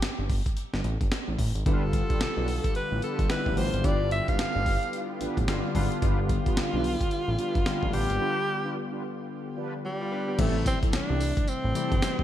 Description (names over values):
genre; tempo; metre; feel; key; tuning
R&B, new jack swing; 110 BPM; 4/4; swing 61% on 16ths; unclear; A4 = 440 Hz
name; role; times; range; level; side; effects
breathy alto saxophone; melody; 0.0-12.2 s; G3 to F5; -31 LUFS; equal; none
fat analog bass; bass; 0.0-12.2 s; G1 to C2; -29 LUFS; equal; none
breakbeat sampler-style drum kit; drums; 0.0-12.2 s; crash cymbal, hi-hat, kick drum, snare drum, tambourine; -28 LUFS; equal; gated reverb
warm analog keys; accompaniment; 1.7-12.2 s; C3 to D5; -33 LUFS; left 4 dB; chorus
lush unison pad; sustained chords; 1.7-10.3 s; D3 to G4; -37 LUFS; equal; chorus
mellow synth brass; stabs; 1.7-11.9 s; C4 to B4; -38 LUFS; right 2 dB; chorus
room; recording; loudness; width
light reverb, digital ambience; bright 1980s-style digital production; -25 LUFS; side -12 dB against mid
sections
0.0-10.4 A section; 10.4-12.2 B section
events
break 8.2-10.4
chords
0.0 A7(no3); 1.7 G7; 10.4 Am7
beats
0.02 0.57 1.11 | 1.66 2.21 2.75 3.30 | 3.84 4.39 4.93 5.48 | 6.02 6.57 7.12 7.66 | 8.21 8.75 9.30 9.84 | 10.39 10.93 11.48 12.02